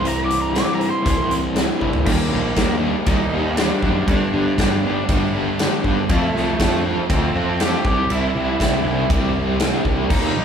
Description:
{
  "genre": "classic rock",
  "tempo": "120 BPM",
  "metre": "4/4",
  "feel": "straight",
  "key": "unclear",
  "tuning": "A4 = 440 Hz",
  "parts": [
    { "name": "biting lead guitar", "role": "melody", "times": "0.0-10.4 s", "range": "A3 to D6", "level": "-25 LUFS", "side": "right 1 dB", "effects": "overdrive, analog delay" },
    { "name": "crunchy overdriven guitar", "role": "riff", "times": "0.0-10.4 s", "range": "G2 to A4", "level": "-21 LUFS", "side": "equal", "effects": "tremolo" },
    { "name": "fuzz picked electric bass", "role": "bass", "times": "0.0-10.4 s", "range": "Bb1 to G2", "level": "-25 LUFS", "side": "left 1 dB", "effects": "overdrive" },
    { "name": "huge arena drum kit", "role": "drums", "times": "0.1-10.2 s", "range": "crash cymbal, hi-hat, kick drum, ride cymbal, snare drum, toms", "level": "-21 LUFS", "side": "equal", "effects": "none" }
  ],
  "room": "light reverb",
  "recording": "band playing live in one room",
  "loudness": "-17 LUFS",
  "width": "side -7 dB against mid",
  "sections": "0.0-2.1 A section; 2.1-10.4 B section",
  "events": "lead electric guitar solo 0.0-2.1; drum fill 1.8",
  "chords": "0.0 C; 2.1 Eb; 4.1 G; 6.1 F; 7.8 C"
}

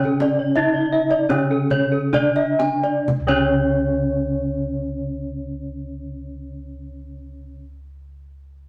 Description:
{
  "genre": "Balinese gamelan",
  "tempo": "59-92 BPM",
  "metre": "4/4",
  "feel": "straight",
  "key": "unclear",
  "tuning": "A4 = 439 Hz",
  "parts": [
    { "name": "gamelan-type bronze metallophone", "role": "melody", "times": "0.0-7.6 s", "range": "C#4 to E4-50c", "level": "-26 LUFS", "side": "equal", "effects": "none" },
    { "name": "gamelan-type bronze metallophone", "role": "accompaniment", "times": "0.0-7.6 s", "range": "C#3", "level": "-30 LUFS", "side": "equal", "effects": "none" },
    { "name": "gamelan-type bronze metallophone", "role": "arpeggios", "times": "0.0-7.6 s", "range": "C#5 to E5-50c", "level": "-26 LUFS", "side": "equal", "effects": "none" },
    { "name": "gamelan-type bossed gongs", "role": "bass", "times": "0.0-7.6 s", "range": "C#2 to D4", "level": "-33 LUFS", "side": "equal", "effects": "none" },
    { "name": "kendang", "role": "percussion", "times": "0.0-3.5 s", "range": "none", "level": "-30 LUFS", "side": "equal", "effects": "none" },
    { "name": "gamelan-type bronze metallophone", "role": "arpeggios", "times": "0.1-7.6 s", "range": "A4-40c to G#5-45c", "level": "-28 LUFS", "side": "equal", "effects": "none" }
  ],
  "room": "wet studio reverb, RT60 1.0 s",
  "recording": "none",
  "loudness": "-20 LUFS",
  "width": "mono",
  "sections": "0.0-3.1 A section; 3.1-7.1 B section",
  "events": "slowing down 0.0-3.1",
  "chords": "none"
}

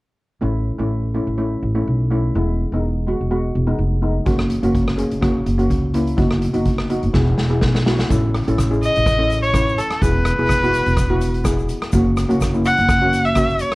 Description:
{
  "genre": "calypso",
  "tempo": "125 BPM",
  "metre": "4/4",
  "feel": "swing 54% on 16ths",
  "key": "unclear",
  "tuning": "A4 = 440 Hz",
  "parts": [
    { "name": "steel pan", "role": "accompaniment", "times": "0.4-13.7 s", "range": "G#3 to B4", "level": "-22 LUFS", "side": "equal", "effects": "none" },
    { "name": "upright bass", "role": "bass", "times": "0.4-13.6 s", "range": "E1 to C#2", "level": "-20 LUFS", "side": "equal", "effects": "none" },
    { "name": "street-band drum kit", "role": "drums", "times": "4.3-13.8 s", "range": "hi-hat, kick drum, rim click, snare drum", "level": "-21 LUFS", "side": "equal", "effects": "none" },
    { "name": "tube shaker", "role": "percussion", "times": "8.1-13.7 s", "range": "none", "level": "-39 LUFS", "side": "left 5 dB", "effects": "none" },
    { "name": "clear erhu", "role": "melody", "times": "8.8-13.8 s", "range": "A4 to F#5", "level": "-18 LUFS", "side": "equal", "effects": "plate reverb" }
  ],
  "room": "light reverb",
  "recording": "worn, warbling old tape, cassette tape, warbly pitch drift",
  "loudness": "-16 LUFS",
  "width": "side -21 dB against mid",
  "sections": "0.4-8.1 A section; 8.1-13.8 B section",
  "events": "drum fill 7.1-8.1",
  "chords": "0.4 A; 2.3 E; 4.3 F#; 6.2 B/F#; 7.1 E; 8.1 Amaj7; 10.0 E; 11.9 F#7"
}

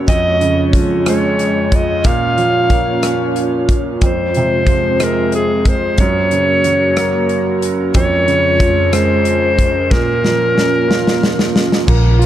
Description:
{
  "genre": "six-eight pop ballad",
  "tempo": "61 BPM (dotted quarters)",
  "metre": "6/8",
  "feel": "straight",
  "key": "unclear",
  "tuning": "A4 = 444 Hz",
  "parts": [
    { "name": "bright concert grand piano", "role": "accompaniment", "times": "0.0-12.3 s", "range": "F2 to F4", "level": "-17 LUFS", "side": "right 4 dB", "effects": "none" },
    { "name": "airy breathy pad", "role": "sustained chords", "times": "0.0-12.3 s", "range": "F2 to Db5", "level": "-20 LUFS", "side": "left 2 dB", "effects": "chorus" },
    { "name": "breathy clarinet", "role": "melody", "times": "0.1-11.5 s", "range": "Ab4 to F5", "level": "-17 LUFS", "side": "left 1 dB", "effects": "ping-pong delay" },
    { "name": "modern studio drum kit", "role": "drums", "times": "0.1-12.3 s", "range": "crash cymbal, hi-hat, kick drum, rim click, snare drum", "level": "-16 LUFS", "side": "equal", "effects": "none" },
    { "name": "vintage muted fingered electric bass", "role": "bass", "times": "11.9-12.3 s", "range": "Bb1", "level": "-10 LUFS", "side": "equal", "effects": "none" }
  ],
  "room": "light reverb, small room ambience",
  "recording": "dark, warm production",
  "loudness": "-12 LUFS",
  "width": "side -12 dB against mid",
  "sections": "0.0-11.9 A section",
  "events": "drum fill 9.9-11.9",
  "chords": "0.1 Db/F; 2.1 Bbm; 4.0 Fm; 6.0 Gb; 7.9 Db/F; 9.9 Bbm"
}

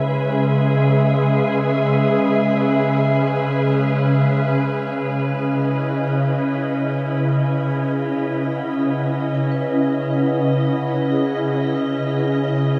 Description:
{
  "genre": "ambient",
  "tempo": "free time",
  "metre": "none",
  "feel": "none",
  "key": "C# minor",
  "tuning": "A4 = 439 Hz",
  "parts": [
    { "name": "glassy FM pad", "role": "sustained chords", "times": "0.0-12.8 s", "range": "C#3 to E5", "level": "-20 LUFS", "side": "equal", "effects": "ensemble chorus, built-in reverb" },
    { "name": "organ-like drone", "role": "drone", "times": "0.0-5.1 s", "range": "C#3 to G#3", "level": "-26 LUFS", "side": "equal", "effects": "ensemble chorus, built-in reverb" },
    { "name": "vibraphone with medium hard mallets", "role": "arpeggios", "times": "5.8-12.8 s", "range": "C#4 to G#5", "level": "-30 LUFS", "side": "equal", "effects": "tape echo" }
  ],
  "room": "wet shimmer reverb, RT60 6.2 s",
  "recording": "cassette tape",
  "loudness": "-19 LUFS",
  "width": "mono",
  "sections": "0.0-5.0 A section; 5.0-12.8 B section",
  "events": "fade-in on vibraphone 5.0-12.8",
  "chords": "0.0 E/C#; 5.0 C#m9"
}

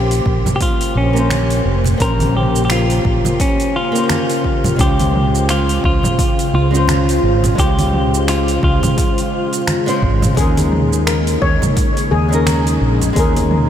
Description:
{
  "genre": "sunset chillout",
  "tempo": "86 BPM",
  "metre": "4/4",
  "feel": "swing 58% on 16ths",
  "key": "Bb dorian",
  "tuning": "A4 = 439 Hz",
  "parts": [
    { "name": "clean electric guitar", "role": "melody", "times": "0.0-10.0 s", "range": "Db4 to Bb4", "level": "-20 LUFS", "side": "left 1 dB", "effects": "tape echo" },
    { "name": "flamenco guitar", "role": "accompaniment", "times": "0.0-13.7 s", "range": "Ab3 to C5", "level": "-22 LUFS", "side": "left 1 dB", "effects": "auto-pan, diffuse ambient delay" },
    { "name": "soft string machine", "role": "sustained chords", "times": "0.0-13.7 s", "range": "Db3 to C5", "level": "-22 LUFS", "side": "equal", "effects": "ensemble chorus" },
    { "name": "mellow fretless electric bass", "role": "bass", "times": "0.0-13.7 s", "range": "F1 to Eb2", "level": "-16 LUFS", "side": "equal", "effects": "none" },
    { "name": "deep house drum kit", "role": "drums", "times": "0.1-13.7 s", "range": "finger snaps, hi-hat, shaker, toms", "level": "-23 LUFS", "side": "right 1 dB", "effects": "overdrive" },
    { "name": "electronic kick drum", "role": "drums", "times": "0.3-13.3 s", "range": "none", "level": "-19 LUFS", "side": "equal", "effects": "overdrive" },
    { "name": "congas", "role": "percussion", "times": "0.5-13.5 s", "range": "none", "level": "-25 LUFS", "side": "right 2 dB", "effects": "none" },
    { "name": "steel pan", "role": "arpeggios", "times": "10.4-13.5 s", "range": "Ab4 to Db5", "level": "-22 LUFS", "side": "left 5 dB", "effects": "diffuse ambient delay" }
  ],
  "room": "moderate huge ambient reverb, RT60 7.9 s",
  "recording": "dreamy mix soaked in reverb",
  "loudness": "-13 LUFS",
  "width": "side -10 dB against mid",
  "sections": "0.0-13.7 A section",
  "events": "none",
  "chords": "0.0 Bbm69; 4.8 Dbmaj7; 10.4 Eb7sus4"
}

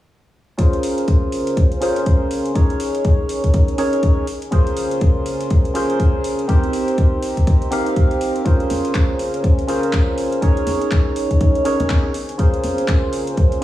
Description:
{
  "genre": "deep house",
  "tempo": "122 BPM",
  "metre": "4/4",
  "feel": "swing 60% on 16ths",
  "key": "Bb dorian",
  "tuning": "A4 = 440 Hz",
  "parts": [
    { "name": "dark analog pad", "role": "sustained chords", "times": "1.0-13.6 s", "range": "Db4 to Bb5", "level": "-26 LUFS", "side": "right 1 dB", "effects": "chorus, phaser, sidechain pumping" },
    { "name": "percussive organ stab", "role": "stabs", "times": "0.6-13.6 s", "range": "C4 to F5", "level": "-21 LUFS", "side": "equal", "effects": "wide subtle chorus, sidechain pumping, analog delay" },
    { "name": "deep house drum kit", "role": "drums", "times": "0.6-13.6 s", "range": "handclaps, hi-hat", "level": "-32 LUFS", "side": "equal", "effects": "studio reverb" },
    { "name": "electronic kick drum", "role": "drums", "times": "0.6-13.5 s", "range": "none", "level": "-15 LUFS", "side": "equal", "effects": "studio reverb" },
    { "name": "congas", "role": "percussion", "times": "8.7-12.8 s", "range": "none", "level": "-28 LUFS", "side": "equal", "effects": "none" }
  ],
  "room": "light reverb, digital ambience",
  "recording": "small room ambience",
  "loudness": "-15 LUFS",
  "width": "side -14 dB against mid",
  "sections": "0.6-13.6 A section",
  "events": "none",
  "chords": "0.6 Bbm9; 2.6 Eb7sus4; 4.3 Bbm9; 6.5 Cm7; 8.5 Bbm9; 10.4 Eb7sus4; 12.1 Bbm9"
}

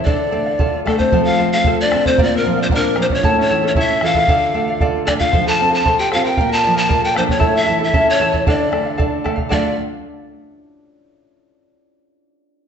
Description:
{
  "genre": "andean folk, Andean ensemble",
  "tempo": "114 BPM",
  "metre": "2/4",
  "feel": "straight",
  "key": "D minor",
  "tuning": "A4 = 440 Hz",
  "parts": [
    { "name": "breathy bright pan flute", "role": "melody", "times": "0.0-9.8 s", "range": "A4 to A5", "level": "-17 LUFS", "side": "left 1 dB", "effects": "none" },
    { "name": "Celtic harp", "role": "second line", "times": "0.0-10.4 s", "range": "A3 to Bb4", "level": "-22 LUFS", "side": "left 4 dB", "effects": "none" },
    { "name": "charango", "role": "accompaniment", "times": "0.0-9.7 s", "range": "E4 to A5", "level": "-22 LUFS", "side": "equal", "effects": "none" },
    { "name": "nylon-string guitar", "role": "accompaniment", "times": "0.0-9.8 s", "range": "A2 to A4", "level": "-23 LUFS", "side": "right 4 dB", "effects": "none" },
    { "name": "bombo", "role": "percussion", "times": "0.1-9.8 s", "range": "none", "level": "-21 LUFS", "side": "right 1 dB", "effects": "none" }
  ],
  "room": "wet recital hall reverb, RT60 1.4 s",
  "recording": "nothing above 8.0 kHz",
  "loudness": "-14 LUFS",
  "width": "side -7 dB against mid",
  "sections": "0.0-1.1 A section; 1.1-9.5 A section; 9.5-10.5 B section",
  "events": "none",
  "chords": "0.1 Dm; 1.1 F; 2.2 Bb; 3.2 A; 4.3 Dm; 5.3 F; 6.4 Bb; 7.4 A; 8.5 Dm"
}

